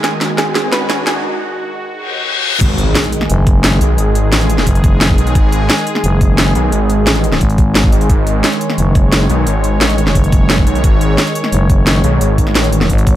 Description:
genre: dark technical drum and bass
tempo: 175 BPM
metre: 4/4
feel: straight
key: G# phrygian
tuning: A4 = 440 Hz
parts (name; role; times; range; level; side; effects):
- sweeping resonant pad; sustained chords; 0.0-13.2 s; D#3 to C#5; -18 LUFS; equal; chorus, sidechain pumping
- analog pluck; arpeggios; 0.0-1.2 s; G#4 to G#5; -20 LUFS; right 2 dB; chorus, sidechain pumping, tape echo
- drum and bass drum kit; drums; 0.0-13.1 s; crash cymbal, hi-hat, snare drum; -16 LUFS; equal; none
- riser, reverse cymbal and impact; sound effects; 0.0-4.0 s; none; -20 LUFS; left 2 dB; none
- wide detuned saw bass; bass; 2.6-12.9 s; G#1 to B1; -14 LUFS; equal; chorus, overdrive
- electronic kick drum; drums; 2.6-13.1 s; none; -12 LUFS; equal; none
- growling FM bass; bass; 3.3-13.2 s; F#1 to G#1; -13 LUFS; equal; none
room: light reverb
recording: high-pass filter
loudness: -10 LUFS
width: side -13 dB against mid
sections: 0.0-2.6 A section; 2.6-13.2 B section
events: build-up 0.0-2.6; drum fill 0.0-1.2; riser 0.0-1.2; filter sweep 0.0-2.6; break 1.2-2.6; reverse cymbal 2.0-2.6; drop 2.6-13.2; impact 2.6-4.0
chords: 0.0 G#5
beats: 0.21 0.55 0.90 | 1.24 1.58 1.93 2.27 | 2.61 2.95 3.30 3.64 | 3.98 4.33 4.67 5.01 | 5.35 5.70 6.04 6.38 | 6.72 7.07 7.41 7.75 | 8.10 8.44 8.78 9.12 | 9.47 9.81 10.15 10.50 | 10.84 11.18 11.53 11.87 | 12.21 12.55 12.90

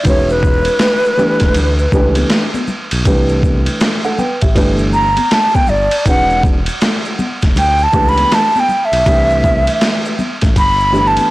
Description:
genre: hip hop, jazz-hop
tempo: 80 BPM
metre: 4/4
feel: swing 63% on 16ths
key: unclear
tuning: A4 = 440 Hz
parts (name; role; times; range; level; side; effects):
- breathy concert flute; melody; 0.0-11.3 s; B4 to B5; -14 LUFS; right 1 dB; plate reverb, analog delay
- dark upright piano; accompaniment; 0.0-11.3 s; D#3 to G5; -18 LUFS; right 1 dB; plate reverb
- boom bap sampler-style drum kit; drums; 0.0-11.3 s; hi-hat, kick drum, ride cymbal, snare drum; -16 LUFS; equal; none
- smooth synth bass; bass; 0.1-11.2 s; E1 to D2; -17 LUFS; equal; transformer saturation
- tube shaker and congas; percussion; 0.1-11.3 s; none; -24 LUFS; left 2 dB; none
room: moderate studio reverb, RT60 0.5 s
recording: blown-out, overdriven recording, vinyl crackle, overdrive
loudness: -11 LUFS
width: side -18 dB against mid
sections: 0.0-11.3 A section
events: flute solo 0.0-11.3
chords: 0.1 Emaj9; 1.6 Gadd9; 3.1 C6; 4.6 G69; 6.1 Emaj9; 7.6 Gadd9; 9.1 C6; 10.6 G69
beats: | 0.06 0.81 1.56 2.31 | 3.06 3.81 4.56 5.31 | 6.06 6.81 7.56 8.31 | 9.06 9.81 10.56

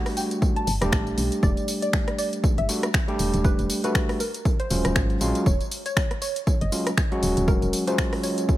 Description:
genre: deep house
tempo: 119 BPM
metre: 4/4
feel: swing 57% on 16ths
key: unclear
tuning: A4 = 440 Hz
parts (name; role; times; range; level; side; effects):
- soft round pluck; melody; 0.0-8.5 s; A#4 to A5; -31 LUFS; equal; analog chorus, tape echo
- overdriven tine electric piano; stabs; 0.0-8.6 s; F#3 to G4; -27 LUFS; equal; sidechain pumping, tape echo
- deep house drum kit; drums; 0.1-8.6 s; finger snaps, hi-hat, rim click, tambourine; -29 LUFS; left 1 dB; overdrive, studio reverb
- electronic kick drum; drums; 0.4-8.6 s; none; -23 LUFS; equal; overdrive, studio reverb
- woody FM bass; bass; 0.7-7.7 s; D#1 to B1; -26 LUFS; equal; none
room: digital ambience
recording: none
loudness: -21 LUFS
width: side -15 dB against mid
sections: 0.0-8.6 A section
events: none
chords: 0.0 Em11; 4.2 D#m11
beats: 0.42 0.92 | 1.43 1.93 2.44 2.94 | 3.44 3.95 4.45 4.96 | 5.46 5.97 6.47 6.97 | 7.48 7.98 8.49

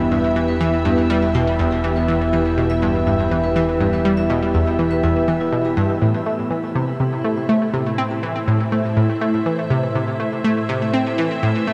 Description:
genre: ambient, sequencer-driven space music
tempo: 122 BPM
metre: 4/4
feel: straight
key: A minor from 6.0 s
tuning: A4 = 438 Hz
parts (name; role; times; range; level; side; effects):
- evolving wavetable pad; sustained chords; 0.0-11.7 s; A2 to B5; -25 LUFS; equal; ensemble chorus, built-in reverb, phaser, shimmer reverb
- vibraphone with medium hard mallets; arpeggios; 0.0-11.7 s; E4 to C6; -26 LUFS; equal; delay, shimmer reverb
- analog pluck; riff; 0.0-11.7 s; E2 to C4; -22 LUFS; equal; chorus, delay, shimmer reverb
- fat analog bass; bass; 0.0-6.0 s; E1; -27 LUFS; equal; none
room: wet huge ambient reverb, RT60 7.9 s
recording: in a vast, echoing space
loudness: -19 LUFS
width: mono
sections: 0.0-6.0 A section; 6.0-11.7 B section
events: none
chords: 0.0 Em; 6.0 Am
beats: | 0.12 0.61 1.10 1.59 | 2.08 2.58 3.07 3.56 | 4.05 4.54 5.04 5.53 | 6.02 6.51 7.00 7.50 | 7.99 8.48 8.97 9.46 | 9.95 10.45 10.94 11.43

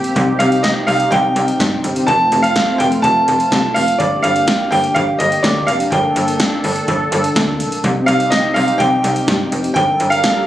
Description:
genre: synth-pop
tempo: 125 BPM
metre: 4/4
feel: straight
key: G minor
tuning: A4 = 439 Hz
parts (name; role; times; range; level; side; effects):
- warm analog pad; sustained chords; 0.0-10.5 s; C3 to Bb4; -20 LUFS; left 1 dB; chorus
- slap-like FM bass; bass; 0.0-10.3 s; F1 to G2; -19 LUFS; equal; none
- electro analog drum machine; drums; 0.0-10.4 s; hi-hat, kick drum, snare drum; -21 LUFS; equal; overdrive
- clear baby grand piano; melody; 0.4-10.4 s; D5 to A5; -16 LUFS; right 1 dB; ping-pong delay
room: light reverb, digital ambience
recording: recorded on a phone in the room, studio ambience, compression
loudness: -13 LUFS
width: side -13 dB against mid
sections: 0.0-10.5 A section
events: none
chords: 0.2 Cm; 2.1 F; 4.0 Gm; 7.8 Cm; 9.8 Gmadd9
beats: | 0.16 0.64 1.12 1.60 | 2.08 2.56 3.04 3.52 | 4.00 4.48 4.96 5.44 | 5.92 6.40 6.88 7.36 | 7.84 8.32 8.80 9.28 | 9.76 10.24

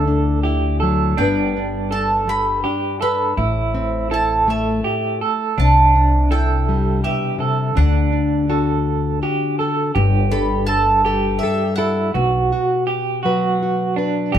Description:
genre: acoustic folk duo or small band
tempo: 82 BPM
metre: 3/4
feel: straight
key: G major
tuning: A4 = 440 Hz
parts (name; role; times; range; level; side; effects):
- mandolin; melody; 0.0-13.9 s; E5 to B5; -20 LUFS; right 2 dB; none
- nylon-string guitar; accompaniment; 0.0-14.4 s; G2 to B4; -21 LUFS; left 3 dB; none
- electric guitar through a small old amp; arpeggios; 0.0-14.4 s; D4 to A4; -21 LUFS; right 5 dB; tremolo
- upright bass; bass; 0.0-14.4 s; G1 to D2; -20 LUFS; equal; none
room: moderate studio reverb, RT60 0.8 s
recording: band playing live in one room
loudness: -16 LUFS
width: side -10 dB against mid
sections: 0.0-10.0 A section; 10.0-14.4 B section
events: none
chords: 0.0 Dadd9; 1.2 G; 3.4 Am; 5.6 Cadd9; 7.8 D; 10.0 Gsus2; 12.2 Bm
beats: 0.44 | 1.17 1.91 2.64 | 3.38 4.11 4.84 | 5.58 6.31 7.04 | 7.77 8.50 9.23 | 9.96 10.69 11.42 | 12.15 12.88 13.61 | 14.34

